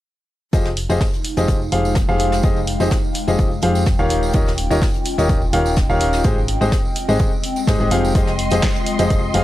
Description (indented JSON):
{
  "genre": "piano house",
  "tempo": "126 BPM",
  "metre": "4/4",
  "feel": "straight",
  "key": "F minor",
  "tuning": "A4 = 442 Hz",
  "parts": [
    { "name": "clear grand piano", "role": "riff", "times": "0.5-9.4 s", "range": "Eb3 to F5", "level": "-21 LUFS", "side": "left 1 dB", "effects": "sidechain pumping" },
    { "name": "solid FM bass", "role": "bass", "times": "0.5-9.4 s", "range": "Eb1 to F2", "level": "-21 LUFS", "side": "equal", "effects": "sidechain pumping" },
    { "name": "electronic kick drum", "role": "drums", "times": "0.5-9.2 s", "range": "none", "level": "-19 LUFS", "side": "equal", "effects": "none" },
    { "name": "jazz brush drum kit", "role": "drums", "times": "0.5-9.4 s", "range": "hi-hat, snare drum", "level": "-33 LUFS", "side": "left 2 dB", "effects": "sidechain pumping on hats, high-pass filter on hats, high-pass filter on snare, high-pass filter on room" },
    { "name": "tambourine", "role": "percussion", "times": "0.5-9.3 s", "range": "none", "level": "-35 LUFS", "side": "right 3 dB", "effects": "none" },
    { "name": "warbly tape-like pad", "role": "texture", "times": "1.2-9.4 s", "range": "Ab3 to G5", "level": "-25 LUFS", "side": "left 1 dB", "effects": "chorus, built-in reverb, sidechain pumping" },
    { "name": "punchy analog drum machine", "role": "drums", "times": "0.8-9.4 s", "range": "hi-hat, snare drum", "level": "-27 LUFS", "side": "right 1 dB", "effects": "none" },
    { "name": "string machine, violins", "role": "sustained chords", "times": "8.2-9.4 s", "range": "Eb5 to C6", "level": "-25 LUFS", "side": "right 1 dB", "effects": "ensemble chorus, sidechain pumping" }
  ],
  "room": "small room ambience",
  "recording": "dry, gritty hardware recording, transformer saturation",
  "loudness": "-15 LUFS",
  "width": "side -14 dB against mid",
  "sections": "0.5-9.4 A section",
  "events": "none",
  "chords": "0.5 Fm9; 4.1 Eb9; 6.2 Abmaj7",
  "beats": "| 0.53 1.01 1.48 1.96 | 2.44 2.91 3.39 3.87 | 4.34 4.82 5.29 5.77 | 6.25 6.72 7.20 7.67 | 8.15 8.63 9.10"
}